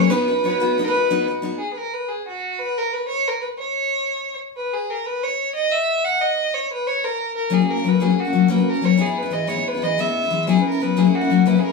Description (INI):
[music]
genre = celtic folk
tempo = 122 BPM (dotted quarters)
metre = 9/8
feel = straight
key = unclear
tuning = A4 = 437 Hz
[part]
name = rich fiddle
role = melody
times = 0.0-11.7 s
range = F#4 to F#5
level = -21 LUFS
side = equal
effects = none
[part]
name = mandolin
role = second line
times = 0.0-1.2 s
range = B4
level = -27 LUFS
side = right 6 dB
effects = none
[part]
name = picked steel-string acoustic guitar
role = accompaniment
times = 0.0-1.6, 7.5-11.7 s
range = E3 to B4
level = -18 LUFS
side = left 6 dB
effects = none
[sound]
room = wet studio reverb, RT60 0.6 s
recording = band playing live in one room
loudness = -18 LUFS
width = side -3 dB against mid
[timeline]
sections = 0.0-1.6 A section; 1.6-11.7 B section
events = none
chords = 0.1 B; 1.6 N.C.; 6.0 F#; 9.0 E; 10.5 F#7sus4; 11.0 F#7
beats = | 0.11 0.60 1.09 | 1.59 2.08 2.57 | 3.07 3.56 4.06 | 4.55 5.04 5.54 | 6.03 6.52 7.02 | 7.51 8.00 8.49 | 8.99 9.48 9.97 | 10.46 10.96 11.45